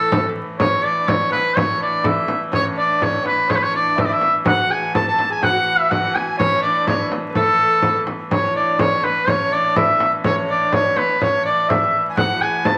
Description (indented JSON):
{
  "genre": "medieval dance",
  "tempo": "124 BPM",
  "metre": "2/4",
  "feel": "straight",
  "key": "A major",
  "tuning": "A4 = 443 Hz",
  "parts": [
    { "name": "clear shawm", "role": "melody", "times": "0.0-12.8 s", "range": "A4 to A5", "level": "-20 LUFS", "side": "equal", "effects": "none" },
    { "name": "breathy reedy alto recorder", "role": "second line", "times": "0.0-0.3, 4.5-12.8 s", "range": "A4 to A5", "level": "-29 LUFS", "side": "equal", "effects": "none" },
    { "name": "lute", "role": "second line", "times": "0.0-12.8 s", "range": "A3 to A4", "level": "-31 LUFS", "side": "equal", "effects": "none" },
    { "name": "rich hurdy-gurdy", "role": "drone", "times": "0.0-12.8 s", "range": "A2 to E3", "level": "-31 LUFS", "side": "equal", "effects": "none" },
    { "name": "frame drum", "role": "percussion", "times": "0.1-12.8 s", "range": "none", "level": "-24 LUFS", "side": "equal", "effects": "none" }
  ],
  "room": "wet studio reverb, RT60 0.8 s",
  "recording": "vinyl crackle",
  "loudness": "-18 LUFS",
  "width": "mono",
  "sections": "0.6-8.3 A section; 8.3-12.8 A section",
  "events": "none",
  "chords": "none"
}